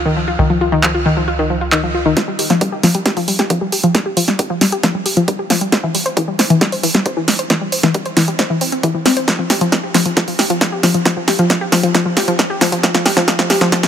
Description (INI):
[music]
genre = uplifting trance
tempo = 135 BPM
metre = 4/4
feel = straight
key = unclear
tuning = A4 = 443 Hz
[part]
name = tight sequencer bass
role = bass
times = 0.0-2.1 s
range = Db2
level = -21 LUFS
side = right 1 dB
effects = sidechain pumping
[part]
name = wide unison pluck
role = arpeggios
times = 0.1-13.9 s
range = Eb3 to C5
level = -16 LUFS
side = left 2 dB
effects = sidechain pumping, ping-pong delay
[part]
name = punchy analog drum machine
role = drums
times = 0.8-13.9 s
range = handclaps, hi-hat, snare drum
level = -16 LUFS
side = right 2 dB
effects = overdrive, high-pass filter on snare, studio reverb, high-pass filter on hats
[part]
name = electronic kick drum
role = drums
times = 2.2-13.8 s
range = none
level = -22 LUFS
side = right 2 dB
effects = overdrive, high-pass filter on kick, studio reverb
[sound]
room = light reverb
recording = none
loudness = -13 LUFS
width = side -9 dB against mid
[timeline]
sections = 0.0-2.2 A section; 2.2-13.9 B section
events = build-up 2.2-13.9; drum fill 2.2-13.9; filter sweep on synth arpeggio sound 2.2-13.9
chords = 0.0 Dbadd9; 2.2 Fsus2; 5.7 C; 9.3 N.C.